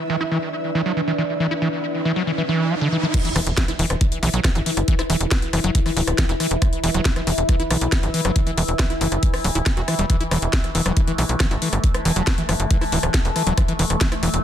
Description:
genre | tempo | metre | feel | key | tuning
psychedelic trance | 138 BPM | 4/4 | straight | unclear | A4 = 436 Hz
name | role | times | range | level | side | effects
overtone-sweeping drone | sustained chords | 0.0-14.4 s | E3 to E4 | -27 LUFS | left 1 dB | chorus, built-in reverb, phaser, vintage 12-bit sampler grit, sidechain pumping
riser and impact | sound effects | 1.4-4.9 s | none | -31 LUFS | right 2 dB | none
ethereal airy pad | texture | 0.0-2.7 s | E4 to E5 | -32 LUFS | right 1 dB | ensemble chorus, built-in reverb, tremolo, sidechain pumping
screaming distorted acid line | riff | 0.1-14.3 s | D3 to F#4 | -24 LUFS | equal | distortion, chorus, auto-pan, cassette tape, sidechain pumping, digital delay
drum and bass drum kit | drums | 3.1-14.4 s | crash cymbal, hi-hat, rim click, snare drum | -25 LUFS | left 1 dB | none
electronic kick drum | drums | 3.1-14.1 s | none | -20 LUFS | equal | none
tight sequencer bass | bass | 3.4-14.4 s | D1 to B1 | -22 LUFS | equal | none
room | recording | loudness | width
light reverb | dense, heavily limited modern master | -18 LUFS | side -10 dB against mid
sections
0.0-3.1 A section; 3.1-14.4 B section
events
riser 1.4-3.1; drop 3.1-14.4; impact 3.1-4.9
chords
0.0 E5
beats
0.10 0.53 0.97 | 1.40 1.84 2.27 2.71 | 3.14 3.58 4.01 4.45 | 4.88 5.31 5.75 6.18 | 6.62 7.05 7.49 7.92 | 8.36 8.79 9.23 9.66 | 10.10 10.53 10.97 11.40 | 11.84 12.27 12.71 13.14 | 13.57 14.01

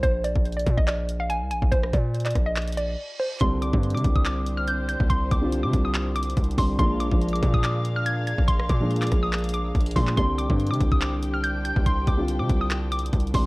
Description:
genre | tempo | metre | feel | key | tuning
hip hop, trap | 142 BPM | 4/4 | half-time | unclear | A4 = 440 Hz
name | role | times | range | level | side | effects
hollow square pluck | melody | 0.0-13.5 s | C5 to Ab6 | -29 LUFS | equal | chorus, low-pass filter, digital delay
distorted 808-style bass | bass | 0.0-13.5 s | Bb1 to C3 | -26 LUFS | equal | distortion
trap drum kit | drums | 0.0-13.4 s | handclaps, hi-hat, kick drum, rim click | -24 LUFS | equal | none
reverse cymbal | sound effects | 2.7-3.4 s | none | -38 LUFS | right 4 dB | none
dark concert grand piano | accompaniment | 3.4-13.5 s | D3 to F4 | -29 LUFS | equal | low-pass filter
dark studio string section | sustained chords | 3.4-13.5 s | C4 to G5 | -36 LUFS | left 1 dB | none
room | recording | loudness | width
digital ambience | worn, warbling old tape, cassette tape, warbly pitch drift | -21 LUFS | side -23 dB against mid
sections
0.0-3.4 A section; 3.4-13.5 B section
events
reverse cymbal 2.7-3.4; break 3.0-3.4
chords
0.0 Bb; 3.4 Csus2; 6.8 Bb7; 10.2 Csus2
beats
| 0.03 0.45 0.88 1.30 | 1.72 2.14 2.57 2.99 | 3.41 3.83 4.26 4.68 | 5.10 5.52 5.95 6.37 | 6.79 7.21 7.64 8.06 | 8.48 8.90 9.33 9.75 | 10.17 10.59 11.02 11.44 | 11.86 12.28 12.71 13.13

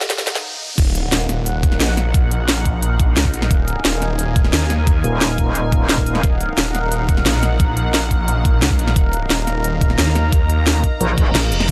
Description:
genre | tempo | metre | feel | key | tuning
dark technical drum and bass | 176 BPM | 4/4 | straight | Eb minor | A4 = 439 Hz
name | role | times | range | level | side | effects
sweeping resonant pad | sustained chords | 0.0-11.7 s | Eb4 to Bb5 | -27 LUFS | equal | chorus, sidechain pumping
drum and bass drum kit | drums | 0.0-11.7 s | crash cymbal, hi-hat, snare drum | -22 LUFS | equal | none
riser, swell, impact and reverse cymbal | sound effects | 0.0-2.1, 11.2-11.7 s | none | -29 LUFS | equal | none
snarling distorted saw bass | bass | 0.8-11.7 s | Eb1 to Eb2 | -21 LUFS | equal | distortion, tube saturation, sidechain pumping
electronic kick drum | drums | 0.8-11.7 s | none | -19 LUFS | equal | none
metallic wobble bass | bass | 5.0-6.2, 11.0-11.3 s | Eb1 to Bb1 | -21 LUFS | equal | chorus
room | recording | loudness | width
little or no reverb | high-pass filter, lossy compression artefacts | -17 LUFS | mono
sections
0.8-11.7 A section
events
drum fill 0.0-0.4; riser 0.0-0.8; swell 0.1-0.8; stop 0.4-0.8; drop 0.8-11.7; impact 0.8-2.1; reverse cymbal 11.2-11.7; kick drops out 11.3-11.7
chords
0.0 Ebmadd9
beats
0.10 0.44 | 0.78 1.12 1.46 1.80 | 2.14 2.48 2.83 3.17 | 3.51 3.85 4.19 4.53 | 4.87 5.21 5.55 5.89 | 6.23 6.58 6.92 7.26 | 7.60 7.94 8.28 8.62 | 8.96 9.30 9.64 9.98 | 10.32 10.67 11.01 11.35 | 11.69

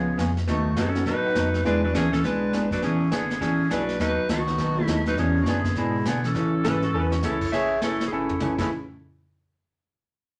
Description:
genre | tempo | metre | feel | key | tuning
country, western swing | 204 BPM | 4/4 | swing 63% on 8ths | A major | A4 = 441 Hz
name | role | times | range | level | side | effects
clean lap steel guitar | melody | 0.0-8.7 s | B2 to E5 | -28 LUFS | equal | none
bright clarinet | second line | 0.0-8.7 s | E4 to C#5 | -31 LUFS | equal | none
archtop guitar, miked and amplified | accompaniment | 0.0-8.7 s | A2 to A4 | -33 LUFS | equal | none
warm upright piano | accompaniment | 0.0-8.7 s | E3 to G#4 | -35 LUFS | equal | none
pure sine sub bass | bass | 0.0-8.7 s | E1 to B2 | -33 LUFS | equal | none
vintage brush drum kit | drums | 0.2-8.6 s | brushed snare drum, crash cymbal, hi-hat, kick drum, snare drum, toms | -34 LUFS | equal | none
pedal steel guitar | second line | 6.6-8.7 s | E4 to B4 | -32 LUFS | equal | none
room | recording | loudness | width
wet studio reverb, RT60 0.6 s | none | -24 LUFS | mono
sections
0.0-7.5 A section; 7.5-8.7 B section; 8.7-9.9 C section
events
drum fill 6.9, 8.1-8.7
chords
0.5 B7/D#; 1.7 E7; 2.8 E9; 4.0 B7; 5.2 E13; 6.3 Amaj7; 8.7 N.C.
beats
0.18 | 0.48 0.77 1.06 1.36 | 1.65 1.95 2.24 2.53 | 2.83 3.12 3.41 3.71 | 4.00 4.29 4.59 4.88 | 5.17 5.47 5.76 6.05 | 6.35 6.64 6.93 7.23 | 7.52 7.82 8.11 8.40

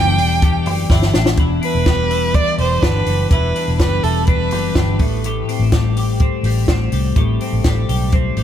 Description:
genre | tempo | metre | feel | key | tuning
jangly indie pop | 125 BPM | 4/4 | straight | unclear | A4 = 440 Hz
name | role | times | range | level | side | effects
rich violin | melody | 0.0-5.0 s | A4 to G5 | -20 LUFS | right 4 dB | digital delay
twelve-string electric guitar | arpeggios | 0.0-8.4 s | E2 to G4 | -20 LUFS | left 5 dB | analog chorus, digital delay
vintage muted fingered electric bass | bass | 0.0-8.4 s | E1 to C2 | -19 LUFS | equal | none
compact cocktail drum kit | drums | 0.2-8.4 s | hi-hat, kick drum, snare drum | -18 LUFS | equal | none
room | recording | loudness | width
light reverb | none | -14 LUFS | side -10 dB against mid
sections
0.0-1.4 A section; 1.4-8.4 B section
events
drum fill 0.9-1.4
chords
0.0 Em7; 5.0 Am7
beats
0.43 0.91 | 1.39 1.87 2.35 2.83 | 3.31 3.79 4.28 4.76 | 5.24 5.72 6.20 6.68 | 7.16 7.64 8.13

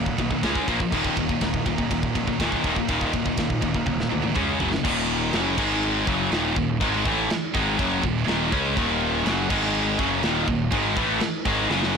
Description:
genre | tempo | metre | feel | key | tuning
heavy metal | 122 BPM | 4/4 | straight | Eb minor | A4 = 440 Hz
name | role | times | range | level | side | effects
distorted electric guitar | riff | 0.0-12.0 s | Eb2 to Db4 | -26 LUFS | left 12 dB | distortion
heavy high-gain guitar | riff | 0.0-12.0 s | Eb2 to Db4 | -26 LUFS | right 12 dB | distortion
sludgy distorted guitar | riff | 0.0-4.3, 8.8-12.0 s | Eb2 to Eb4 | -30 LUFS | right 1 dB | overdrive
fuzz picked electric bass | bass | 0.0-12.0 s | Eb1 to D2 | -30 LUFS | equal | overdrive, tube saturation
tight metal drum kit | drums | 0.1-11.9 s | crash cymbal, kick drum, ride cymbal, snare drum, toms | -28 LUFS | equal | none
room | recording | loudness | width
light reverb | blown-out, overdriven recording, overdrive | -21 LUFS | side -6 dB against mid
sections
0.0-4.8 A section; 4.8-12.0 B section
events
drum fill 3.9-4.8, 11.7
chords
0.4 Db5; 0.7 Bb5; 0.9 Ebm; 4.4 Db5; 4.6 Gb5; 4.8 Ebm; 5.6 Ab5; 6.1 Ebm; 9.5 Ab5; 10.0 Ebm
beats
0.42 | 0.91 1.41 1.90 2.39 | 2.88 3.37 3.86 4.35 | 4.84 5.33 5.83 6.32 | 6.81 7.30 7.79 8.28 | 8.77 9.26 9.74 10.23 | 10.72 11.21 11.70

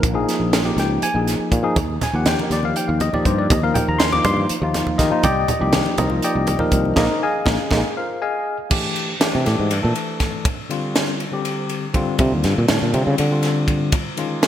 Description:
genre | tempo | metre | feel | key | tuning
electric jazz fusion | 242 BPM (eighths) | 7/8 | straight | Eb major | A4 = 440 Hz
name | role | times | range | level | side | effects
tine electric piano | accompaniment | 0.0-14.5 s | D3 to D6 | -21 LUFS | left 2 dB | medium stereo tremolo
sustaining fretless electric bass | bass | 0.0-13.9 s | Bb1 to Eb3 | -21 LUFS | right 1 dB | none
crisp fusion drum kit | drums | 0.0-14.5 s | crash cymbal, hi-hat, kick drum, ride cymbal, snare drum | -22 LUFS | right 1 dB | gated reverb
congas | percussion | 1.8-7.8 s | none | -26 LUFS | right 2 dB | none
room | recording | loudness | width
moderate lush hall reverb, RT60 1.7 s, small room ambience | bright 1980s-style digital production | -17 LUFS | side -10 dB against mid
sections
0.0-8.7 A section; 8.7-14.5 A section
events
band accent 7.0-8.7; fretless electric bass solo 8.7-14.5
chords
0.0 Bb7(no3); 1.8 Ebadd9; 5.2 Cm9; 7.0 Bb9sus4; 8.7 C69 (rootless); 10.5 D7sus4; 12.2 Eb69 (rootless); 13.9 Dbadd9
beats
| 0.04 0.28 0.53 0.78 1.03 1.27 1.52 | 1.77 2.02 2.27 2.51 2.76 3.01 3.26 | 3.50 3.75 4.00 4.25 4.50 4.74 4.99 | 5.24 5.49 5.74 5.98 6.23 6.48 6.73 | 6.98 7.22 7.47 7.72 7.97 8.22 8.46 | 8.71 8.96 9.21 9.46 9.71 9.96 10.21 | 10.45 10.70 10.95 11.20 11.45 11.70 11.95 | 12.20 12.44 12.69 12.94 13.19 13.44 13.69 | 13.94 14.19 14.44

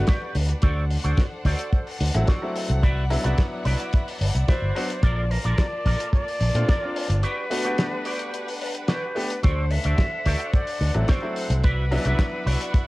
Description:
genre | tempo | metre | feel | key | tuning
nu-disco, nu disco | 109 BPM | 4/4 | straight | D mixolydian | A4 = 440 Hz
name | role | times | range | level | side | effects
concert flute | melody | 0.0-0.3, 4.5-12.9 s | Bb4 to E5 | -30 LUFS | left 1 dB | analog delay
bright grand piano | accompaniment | 0.0-12.9 s | F#3 to F#5 | -30 LUFS | left 1 dB | sidechain pumping, cassette tape, analog delay
bright studio string section | sustained chords | 0.0-12.9 s | G3 to B5 | -36 LUFS | left 1 dB | sidechain pumping, cassette tape
fingered electric bass with an envelope filter | bass | 0.0-12.5 s | G1 to Bb2 | -22 LUFS | equal | none
electric guitar with an envelope filter | riff | 0.1-12.9 s | E4 to D5 | -32 LUFS | right 1 dB | analog chorus, cassette tape
damped 70s drum kit | drums | 0.1-12.9 s | hi-hat, snare drum | -30 LUFS | left 1 dB | studio ambience, cassette tape
kick drum | drums | 0.1-12.9 s | none | -20 LUFS | equal | studio ambience, cassette tape
room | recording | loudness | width
little or no reverb | home recording on cassette | -21 LUFS | side -20 dB against mid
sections
0.0-12.9 A section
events
break 7.2-9.4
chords
0.0 Gmaj7; 0.6 D7; 2.8 Cmaj9#11; 5.0 Bbmaj7; 7.2 Gmaj7; 9.4 D7; 11.6 Cmaj9#11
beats
0.08 | 0.63 1.18 1.73 2.28 | 2.83 3.38 3.93 4.48 | 5.03 5.58 6.13 6.68 | 7.23 7.79 8.34 8.89 | 9.44 9.99 10.54 11.09 | 11.64 12.19 12.74

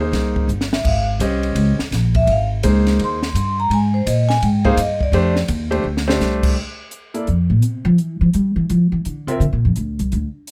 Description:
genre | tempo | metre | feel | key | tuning
modal jazz | 168 BPM | 4/4 | swing 64% on 8ths | Db lydian, Bb lydian from 6.6 s | A4 = 438 Hz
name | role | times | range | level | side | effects
clear grand piano | accompaniment | 0.0-9.4 s | A3 to E5 | -24 LUFS | equal | none
upright bass | bass | 0.0-10.3 s | G1 to G3 | -20 LUFS | equal | none
compact cocktail drum kit | drums | 0.1-10.5 s | crash cymbal, hi-hat, kick drum, ride cymbal, snare drum | -27 LUFS | equal | none
vibraphone with soft mallets | melody | 0.7-5.3 s | C5 to C6 | -23 LUFS | equal | none
room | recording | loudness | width
little or no reverb | close, detailed microphones | -18 LUFS | mono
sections
0.0-6.6 A section; 6.6-10.5 A section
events
vibraphone solo 0.0-6.6; drum fill 0.5-0.8, 5.8-6.2; upright bass solo 6.6-10.5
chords
0.0 Dbmaj7sus2; 5.1 F7; 6.6 Bbadd9(#11)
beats
0.13 0.49 | 0.85 1.21 1.56 1.92 | 2.28 2.63 2.99 3.35 | 3.70 4.06 4.42 4.77 | 5.13 5.49 5.84 6.20 | 6.56 6.91 7.27 7.63 | 7.98 8.34 8.70 9.05 | 9.41 9.77 10.12 10.48

